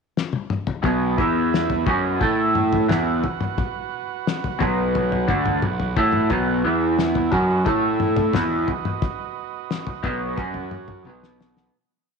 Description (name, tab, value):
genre	psychedelic rock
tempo	88 BPM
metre	4/4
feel	straight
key	B mixolydian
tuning	A4 = 440 Hz
part	cloth-damped thuddy drum kit	drums	0.2-11.7 s	kick drum, snare drum, toms	-25 LUFS	left 4 dB	none
part	overdriven combo organ	sustained chords	0.8-11.7 s	E4 to F#5	-31 LUFS	right 13 dB	none
part	electric guitar through a small old amp	riff	0.8-11.7 s	B2 to A4	-20 LUFS	right 1 dB	phaser, double-tracked left and right
part	fuzz picked electric bass	bass	0.8-11.7 s	B1 to A2	-28 LUFS	equal	overdrive
room	light reverb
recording	1960s-style stereo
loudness	-19 LUFS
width	side -5 dB against mid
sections	0.0-0.8 pickup bar; 0.8-11.7 riff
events	drum fill 0.2-0.8, 11.1-11.7; fade-out 9.0-11.7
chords	0.0 N.C.; 0.8 B; 1.2 E5; 1.9 B; 2.2 A5; 2.9 B5; 6.6 E5; 7.3 B; 7.7 A5; 8.3 B; 10.4 F#5; 11.1 B